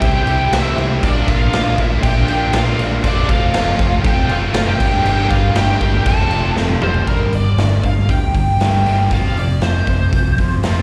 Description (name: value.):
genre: classic rock.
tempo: 119 BPM.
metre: 4/4.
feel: straight.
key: G dorian.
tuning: A4 = 440 Hz.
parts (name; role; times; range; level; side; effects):
biting lead guitar; melody; 0.0-10.8 s; Bb4 to A5; -24 LUFS; equal; wah, overdrive, plate reverb, slapback echo.
octave-fuzz lead guitar; second line; 0.0-6.5 s; D4 to A4; -28 LUFS; equal; none.
clear upright piano; accompaniment; 0.0-7.0 s; G4 to G5; -33 LUFS; equal; none.
string machine, full ensemble; sustained chords; 0.0-7.1 s; C4 to G5; -34 LUFS; equal; none.
crunchy overdriven guitar; riff; 0.0-10.8 s; F2 to E4; -27 LUFS; equal; none.
overdriven electric guitar; riff; 0.0-10.8 s; F2 to G4; -26 LUFS; equal; slapback echo.
overdriven fingered electric bass; bass; 0.0-10.8 s; F1 to D2; -21 LUFS; equal; none.
raw garage drum kit; drums; 0.0-10.8 s; crash cymbal, hi-hat, kick drum, snare drum, toms; -20 LUFS; equal; none.
room: light reverb.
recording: live gig heard through the venue's PA, recital hall reverb.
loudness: -16 LUFS.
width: mono.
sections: 0.0-7.1 A section; 7.1-10.8 B section.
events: drum fill 6.6-7.1.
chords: 0.0 C; 1.0 Bb; 3.0 F; 4.8 Gm; 6.1 F; 7.1 G5; 9.1 F5.